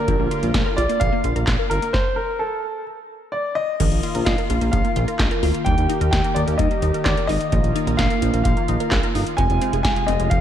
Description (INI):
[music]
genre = synth-pop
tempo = 129 BPM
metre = 4/4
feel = straight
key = Bb mixolydian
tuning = A4 = 435 Hz
[part]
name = clear grand piano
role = melody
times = 0.0-10.4 s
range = A4 to Ab5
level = -24 LUFS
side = equal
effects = slapback echo, tape echo
[part]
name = brassy analog pad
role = sustained chords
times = 0.0-10.4 s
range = C3 to G4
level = -26 LUFS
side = equal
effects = chorus
[part]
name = resonant blip pluck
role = arpeggios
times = 0.0-10.4 s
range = D3 to G5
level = -28 LUFS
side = left 1 dB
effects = phaser, slapback echo, tape echo
[part]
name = chorused synth bass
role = bass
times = 0.1-10.4 s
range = F1 to Eb2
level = -22 LUFS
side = equal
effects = none
[part]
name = electro analog drum machine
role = drums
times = 0.1-10.4 s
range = crash cymbal, handclaps, hi-hat, kick drum, snare drum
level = -22 LUFS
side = equal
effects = none
[sound]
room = light reverb, digital ambience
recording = none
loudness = -18 LUFS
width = side -10 dB against mid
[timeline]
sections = 0.0-3.8 A section; 3.8-10.4 B section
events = stop 1.9-3.8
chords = 0.1 Bb; 1.9 N.C.; 3.8 Bbsus4; 5.7 Eb; 7.5 Bbsus4; 9.4 Fm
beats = | 0.08 0.55 1.01 1.48 | 1.94 2.41 2.87 3.34 | 3.80 4.27 4.73 5.20 | 5.66 6.13 6.59 7.06 | 7.52 7.99 8.45 8.92 | 9.38 9.85 10.31